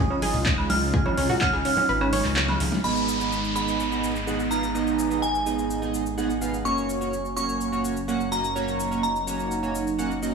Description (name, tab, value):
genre	progressive house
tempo	126 BPM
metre	4/4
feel	straight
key	G# dorian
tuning	A4 = 438 Hz
part	glassy synth bell	melody	0.0-10.3 s	G#5 to E#6	-28 LUFS	right 1 dB	chorus, phaser, dub echo
part	lush unison pad	sustained chords	0.0-10.3 s	C#3 to E#4	-31 LUFS	equal	chorus, phaser, sidechain pumping
part	analog pluck	arpeggios	0.0-2.7 s	C#4 to C#5	-29 LUFS	equal	chorus, cassette tape, sidechain pumping, dub echo
part	dark detuned saw bass	bass	0.0-10.3 s	F#1 to C#2	-32 LUFS	left 1 dB	sidechain pumping
part	woodblock and congas	percussion	0.1-2.7 s	none	-32 LUFS	right 2 dB	sidechain pumping on perc
part	pop drum kit	drums	0.2-10.3 s	crash cymbal, handclaps, hi-hat, shaker, snare drum	-31 LUFS	equal	overdrive
part	electronic kick drum	drums	0.5-1.5 s	none	-25 LUFS	equal	overdrive
part	chorused polysynth	stabs	2.8-10.3 s	A#3 to F#5	-27 LUFS	right 5 dB	sidechain pumping, dub echo
part	downlifter	sound effects	2.8-6.7 s	none	-33 LUFS	equal	none
room	moderate lush hall reverb, RT60 1.7 s, digital ambience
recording	studio ambience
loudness	-22 LUFS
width	side -5 dB against mid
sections	0.0-2.8 A section; 2.8-10.3 B section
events	filter sweep on analog synth pad 0.0-2.8, 2.8-10.3; kick drops out 1.9-2.8; drum fill 2.4-2.8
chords	0.0 C#add9; 2.8 G#m; 6.7 F#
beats	0.46 | 0.94 1.41 1.89 2.37 | 2.84 3.32 3.79 4.27 | 4.75 5.22 5.70 6.17 | 6.65 7.13 7.60 8.08 | 8.56 9.03 9.51 9.98